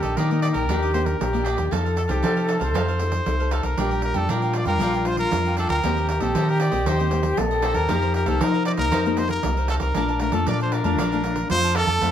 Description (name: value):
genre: samba and choro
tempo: 116 BPM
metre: 4/4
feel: straight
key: Bb major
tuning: A4 = 440 Hz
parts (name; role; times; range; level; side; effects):
- bright trumpet; melody; 0.0-12.1 s; G4 to D5; -26 LUFS; equal; none
- breathy wooden flute; second line; 0.0-12.0 s; D4 to A4; -26 LUFS; left 3 dB; none
- cavaquinho; accompaniment; 0.0-12.1 s; D4 to A5; -30 LUFS; right 4 dB; none
- nylon-string guitar; accompaniment; 0.0-12.1 s; Bb2 to A4; -29 LUFS; left 4 dB; none
- overdriven fingered electric bass; bass; 0.0-12.1 s; Bb1 to F3; -24 LUFS; equal; none
- pandeiro; percussion; 0.0-12.1 s; none; -30 LUFS; right 6 dB; none
room: moderate studio reverb, RT60 0.6 s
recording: minimal, uncompressed stereo recording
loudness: -20 LUFS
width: side -10 dB against mid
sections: 0.0-12.0 A section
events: none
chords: 0.0 Ebmaj7; 1.7 F9; 3.8 Bb6; 5.8 Eb6; 7.9 F9sus4; 10.0 Bbmaj7